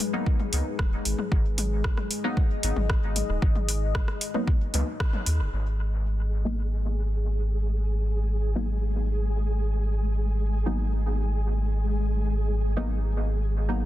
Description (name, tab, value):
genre	dub techno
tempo	114 BPM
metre	4/4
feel	straight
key	G# minor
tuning	A4 = 440 Hz
part	deep dark ambient pad	sustained chords	0.0-13.9 s	G#3 to D#5	-36 LUFS	left 5 dB	chorus, built-in reverb, sidechain pumping
part	deep house drum kit	drums	0.0-5.4 s	hi-hat, rim click	-32 LUFS	equal	soft clipping on snare, dub echo
part	electronic toms	percussion	0.0-5.2 s	none	-38 LUFS	left 4 dB	sidechain pumping on toms, sidechain pumping on perc, dub echo
part	deep mellow chord stab	stabs	0.1-13.8 s	F#3 to D#4	-34 LUFS	equal	chorus, phaser, sidechain pumping, dub echo
part	electronic kick drum	drums	0.3-5.1 s	none	-24 LUFS	equal	none
part	soft dub sub bass	bass	0.5-13.9 s	D#1 to D#2	-26 LUFS	equal	sidechain pumping
part	flickering grainy texture	texture	5.9-13.9 s	G#3 to G#4	-35 LUFS	equal	built-in reverb, sidechain pumping
room	little or no reverb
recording	dense, heavily limited modern master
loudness	-24 LUFS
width	side -14 dB against mid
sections	0.0-5.5 A section; 5.5-13.9 B section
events	band accent 5.0; filter sweep on synth stab 5.5-13.9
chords	0.0 G#m7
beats	0.26 0.79 | 1.32 1.84 2.37 2.90 | 3.42 3.95 4.47 5.00 | 5.53 6.05 6.58 7.11 | 7.63 8.16 8.69 9.21 | 9.74 10.26 10.79 11.32 | 11.84 12.37 12.90 13.42